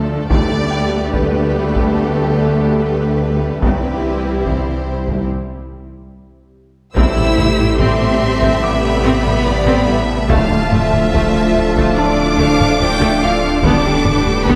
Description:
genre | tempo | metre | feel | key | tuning
cinematic, hybrid orchestral and electronic film score | 72 BPM | 4/4 | straight | unclear | A4 = 439 Hz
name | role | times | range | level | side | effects
warm symphonic violin section | second line | 0.0-14.6 s | B3 to G5 | -25 LUFS | equal | none
rich symphonic viola section | accompaniment | 0.0-14.6 s | D3 to G4 | -25 LUFS | equal | none
phased analog pad | sustained chords | 0.0-14.6 s | C3 to B4 | -26 LUFS | equal | phaser, chorus
warm trombone section | sustained chords | 0.0-14.6 s | A2 to A3 | -26 LUFS | equal | none
warm symphonic cello section | bass | 0.0-14.6 s | C2 to E4 | -23 LUFS | equal | none
warm symphonic double bass section | bass | 0.0-14.5 s | A1 to D2 | -24 LUFS | equal | none
bright grand piano | texture | 0.0-14.6 s | G5 to D6 | -32 LUFS | equal | none
warm symphonic violin section | melody | 0.3-14.6 s | A4 to E6 | -26 LUFS | equal | none
taiko ensemble | drums | 0.3-14.6 s | none | -22 LUFS | equal | none
warm French horn section | sustained chords | 7.0-14.6 s | C3 to D4 | -26 LUFS | equal | none
phased detuned saw bass | bass | 7.0-14.6 s | D1 to A1 | -24 LUFS | equal | phaser
room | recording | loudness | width
wet scoring stage reverb, RT60 2.0 s | none | -15 LUFS | mono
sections
0.0-7.0 A section; 7.0-14.6 A section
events
break 5.3-7.0; drum fill 6.1-7.0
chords
0.3 Gadd9/D; 3.6 C; 7.0 Am7; 10.3 Dm; 13.6 Gadd9/D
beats
| 0.30 1.13 1.97 2.80 | 3.63 4.47 5.30 6.13 | 6.97 7.80 8.63 9.47 | 10.30 11.13 11.97 12.80 | 13.63 14.47

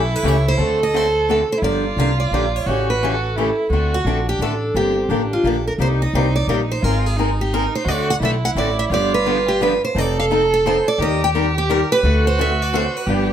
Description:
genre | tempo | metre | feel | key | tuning
acoustic string swing (jazz manouche) | 173 BPM | 3/4 | swing 61% on 8ths | G minor | A4 = 437 Hz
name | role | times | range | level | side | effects
picked steel-string acoustic guitar | melody | 0.0-13.3 s | F4 to G5 | -21 LUFS | right 2 dB | none
warm violin | second line | 0.0-13.3 s | C4 to A4 | -23 LUFS | right 3 dB | none
upright bass | bass | 0.0-13.3 s | F1 to Eb2 | -21 LUFS | equal | none
picked swing-style acoustic guitar | accompaniment | 0.2-13.3 s | C3 to Bb4 | -23 LUFS | left 3 dB | none
room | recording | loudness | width
moderate studio reverb, RT60 0.6 s | close, detailed microphones | -16 LUFS | side -9 dB against mid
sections
0.0-5.8 A section; 5.8-13.3 B section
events
none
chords
0.0 A7; 0.6 D7; 1.6 Gm7; 2.7 A7; 3.7 D7; 4.7 Gm7; 5.8 Cm7; 6.8 Abadd9; 7.9 D7; 8.9 G7; 9.9 F7; 11.0 Cm7/Eb; 12.0 D7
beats
0.24 | 0.59 0.93 1.28 | 1.63 1.97 2.32 | 2.67 3.02 3.36 | 3.71 4.05 4.40 | 4.75 5.10 5.44 | 5.79 6.14 6.48 | 6.83 7.18 7.52 | 7.87 8.21 8.56 | 8.91 9.26 9.60 | 9.95 10.29 10.64 | 10.99 11.33 11.68 | 12.03 12.37 12.72 | 13.07

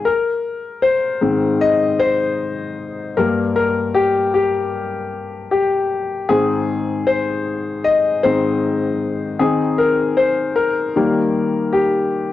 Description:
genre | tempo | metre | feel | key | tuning
pop | 77 BPM | 4/4 | straight | Ab major | A4 = 439 Hz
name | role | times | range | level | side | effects
bright concert grand piano | solo | 0.0-12.3 s | G2 to Eb5 | -16 LUFS | left 3 dB | cassette tape
room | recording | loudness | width
wet booth ambience, RT60 0.2 s | home recording on cassette | -16 LUFS | side -13 dB against mid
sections
0.1-12.3 A section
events
grand piano solo 0.1-12.3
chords
0.0 Ab; 3.2 Gm; 6.3 Ab; 9.4 Abadd9/Eb; 11.0 Eb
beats
| 0.06 0.84 1.61 2.39 | 3.17 3.95 4.73 5.51 | 6.29 7.07 7.85 8.63 | 9.41 10.19 10.96 11.74

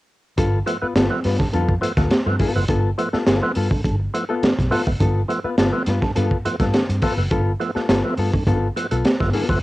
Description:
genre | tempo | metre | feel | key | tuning
funk | 104 BPM | 4/4 | straight | G mixolydian | A4 = 440 Hz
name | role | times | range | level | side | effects
hollow-body jazz guitar | accompaniment | 0.4-9.5 s | B3 to B4 | -24 LUFS | left 4 dB | cassette tape
percussive tonewheel organ | stabs | 0.4-9.6 s | G2 to B3 | -24 LUFS | right 1 dB | overdrive, chorus vibrato, slow rotary speaker, cassette tape
vintage muted fingered electric bass | bass | 0.4-9.6 s | F#1 to G2 | -22 LUFS | equal | none
crunchy breakbeat drum kit | drums | 0.4-9.6 s | hi-hat, kick drum, snare drum | -21 LUFS | equal | cassette tape
room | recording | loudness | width
little or no reverb | home recording on cassette | -18 LUFS | side -18 dB against mid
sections
0.4-9.6 A section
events
none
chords
0.4 G9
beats
| 0.38 0.96 1.54 2.11 | 2.69 3.27 3.85 4.43 | 5.00 5.58 6.16 6.74 | 7.32 7.89 8.47 9.05

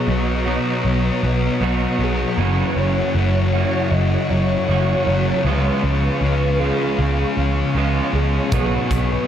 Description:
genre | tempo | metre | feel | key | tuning
rock, shoegaze and dream pop | 78 BPM | 4/4 | straight | B major | A4 = 440 Hz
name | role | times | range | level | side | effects
warm velvety synth lead | melody | 0.0-9.3 s | G#4 to D#5 | -26 LUFS | equal | chorus, diffuse ambient delay
soft string machine | sustained chords | 0.0-9.3 s | E4 to C#6 | -28 LUFS | right 2 dB | ensemble chorus
overdriven electric guitar | riff | 0.0-9.3 s | F#2 to F#4 | -26 LUFS | right 6 dB | reverse reverb
thick fuzz guitar | riff | 0.0-9.3 s | F#2 to C#4 | -21 LUFS | left 3 dB | distortion, wide subtle chorus
vintage muted picked electric bass | bass | 0.1-9.2 s | F#1 to C#2 | -20 LUFS | equal | none
big rock drum kit | drums | 8.5-9.1 s | hi-hat, kick drum | -24 LUFS | equal | none
room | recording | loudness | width
wet lush hall reverb, RT60 2.4 s | dreamy mix soaked in reverb | -16 LUFS | side -9 dB against mid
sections
0.0-9.3 A section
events
none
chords
0.0 Badd9; 2.4 F#5; 5.5 C#7; 8.5 B69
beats
0.08 0.85 1.61 | 2.38 3.15 3.92 4.69 | 5.46 6.22 6.99 7.76 | 8.53

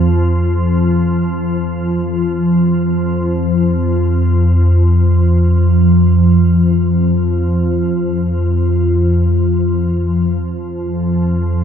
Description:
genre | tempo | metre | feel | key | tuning
ambient | free time | none | none | unclear | A4 = 436 Hz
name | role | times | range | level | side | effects
organ-like drone | solo | 0.0-11.6 s | F2 to F3 | -12 LUFS | equal | ensemble chorus, built-in reverb, tape echo
room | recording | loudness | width
wet cathedral reverb, RT60 6.5 s | in a vast, echoing space | -12 LUFS | side -8 dB against mid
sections
0.0-10.2 A section; 10.2-11.6 B section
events
none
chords
none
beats
free time

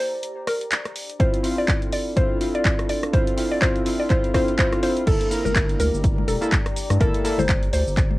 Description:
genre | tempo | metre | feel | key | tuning
deep house | 124 BPM | 4/4 | swing 57% on 16ths | G dorian | A4 = 440 Hz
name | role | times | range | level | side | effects
mallet-like synth pluck | melody | 0.0-8.1 s | A4 to D5 | -26 LUFS | equal | chorus, cassette tape, analog delay
warbly tape-like pad | texture | 0.0-8.2 s | D4 to Bb5 | -33 LUFS | right 1 dB | chorus, built-in reverb, sidechain pumping
house drum kit | drums | 0.2-8.1 s | cabasa, crash cymbal, handclaps, hi-hat, rim click | -27 LUFS | equal | studio reverb, cassette tape
warm analog keys | stabs | 1.2-7.4 s | Bb3 to Bb4 | -26 LUFS | equal | chorus, sidechain pumping, low-pass filter, analog delay
electronic kick drum | drums | 1.2-8.1 s | none | -22 LUFS | equal | studio reverb, cassette tape
round analog bass | bass | 5.1-8.2 s | E1 to G2 | -24 LUFS | equal | sidechain pumping
congas | percussion | 5.5-8.2 s | none | -31 LUFS | left 7 dB | none
room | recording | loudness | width
light reverb | home recording on cassette | -19 LUFS | side -19 dB against mid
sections
0.0-5.1 A section; 5.1-8.2 B section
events
build-up 0.0-5.1; drop 5.1-8.2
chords
0.0 Gm; 1.0 Dm9; 5.1 Gm69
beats
0.23 0.71 | 1.20 1.68 2.17 2.65 | 3.13 3.62 4.10 4.59 | 5.07 5.55 6.04 6.52 | 7.00 7.49 7.97

